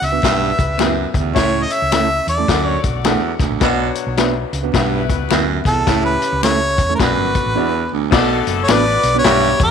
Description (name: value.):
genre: uptempo 1960s-style soul.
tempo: 106 BPM.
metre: 4/4.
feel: swing 62% on 8ths.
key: B minor.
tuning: A4 = 439 Hz.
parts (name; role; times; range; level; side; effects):
clear harmonica; melody; 0.0-9.7 s; A4 to E5; -18 LUFS; right 1 dB; none.
warm baby grand piano; accompaniment; 0.0-9.7 s; B2 to F#5; -23 LUFS; left 12 dB; none.
hollow-body short-scale fingered electric bass; bass; 0.0-9.7 s; F#1 to E2; -22 LUFS; equal; none.
vintage drum kit; drums; 0.0-9.7 s; crash cymbal, hi-hat, kick drum, snare drum; -19 LUFS; left 4 dB; none.
mellow electric guitar; stabs; 0.1-9.2 s; A3 to B4; -24 LUFS; right 15 dB; harmonic tremolo.
edgy saxophone section; second line; 0.2-9.7 s; D3 to D5; -26 LUFS; left 12 dB; none.
growling baritone saxophone; riff; 0.2-9.5 s; D2 to B2; -21 LUFS; right 12 dB; none.
finger snap; percussion; 0.8-8.8 s; none; -29 LUFS; left 12 dB; none.
room: light reverb, small room reverb.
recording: 1960s-style stereo with parts hard left and right.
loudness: -14 LUFS.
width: side -7 dB against mid.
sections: 0.0-8.1 A section; 8.1-9.7 B section.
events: none.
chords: 0.2 Em/B; 1.4 A/C#; 2.5 D; 3.6 Bm; 4.7 Em/B; 5.9 A/C#; 7.0 Bm.